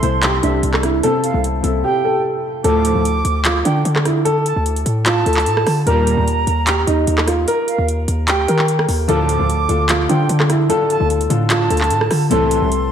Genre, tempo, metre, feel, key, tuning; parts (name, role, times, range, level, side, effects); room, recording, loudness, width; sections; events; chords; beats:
hip hop, trap; 149 BPM; 4/4; half-time; D minor; A4 = 440 Hz
dark baby grand piano; melody; 0.0-12.9 s; D4 to Bb4; -19 LUFS; equal; low-pass filter, tape echo
silver concert flute; second line; 0.0-12.9 s; Eb5 to D6; -23 LUFS; right 4 dB; tape echo
dark baby grand piano; accompaniment; 0.0-2.7, 9.1-12.9 s; C3 to C5; -21 LUFS; left 3 dB; lush chorus, low-pass filter
hard-hitting 808-style bass; bass; 0.0-12.9 s; C2 to Eb3; -18 LUFS; equal
booming analog drum machine; drums; 0.0-12.8 s; handclaps, hi-hat, rim click; -21 LUFS; right 1 dB
analog synth brass; stabs; 2.6-3.0, 5.9-6.2, 9.1-9.5, 12.3-12.7 s; C2 to G3; -24 LUFS; right 1 dB; chorus
wet lush hall reverb, RT60 1.9 s, small room ambience; dreamy mix soaked in reverb; -14 LUFS; side -8 dB against mid
0.0-2.6 A section; 2.6-12.9 A section
drums muted 1.8-2.6
0.0 C6; 2.6 D5; 5.9 Eb; 9.1 Dm; 12.3 C6
0.23 0.63 | 1.03 1.44 1.84 2.24 | 2.64 3.05 3.45 3.85 | 4.25 4.66 5.06 5.46 | 5.87 6.27 6.67 7.07 | 7.48 7.88 8.28 8.68 | 9.09 9.49 9.89 10.29 | 10.70 11.10 11.50 11.91 | 12.31 12.71